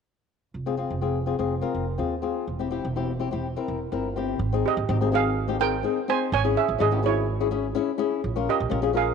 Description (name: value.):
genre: calypso.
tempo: 125 BPM.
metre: 4/4.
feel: straight.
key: Ab major.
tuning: A4 = 440 Hz.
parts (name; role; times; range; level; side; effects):
upright bass; bass; 0.5-9.1 s; E1 to Eb2; -28 LUFS; right 2 dB; none.
flamenco guitar; accompaniment; 0.7-9.1 s; C4 to Bb4; -26 LUFS; left 8 dB; none.
steel pan; melody; 4.7-9.1 s; Fb4 to Ab5; -25 LUFS; right 12 dB; none.
room: moderate plate reverb, RT60 2.8 s.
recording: 1960s-style stereo with parts hard left and right.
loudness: -23 LUFS.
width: side -6 dB against mid.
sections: 0.5-4.4 A section; 4.4-9.1 B section.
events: none.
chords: 0.5 Fm7; 2.5 C7/E; 4.4 Abadd9; 6.3 Dbm/Ab; 8.2 Bbm.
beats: | 0.55 1.03 1.51 1.99 | 2.48 2.96 3.44 3.92 | 4.40 4.88 5.36 5.84 | 6.32 6.80 7.28 7.76 | 8.23 8.71.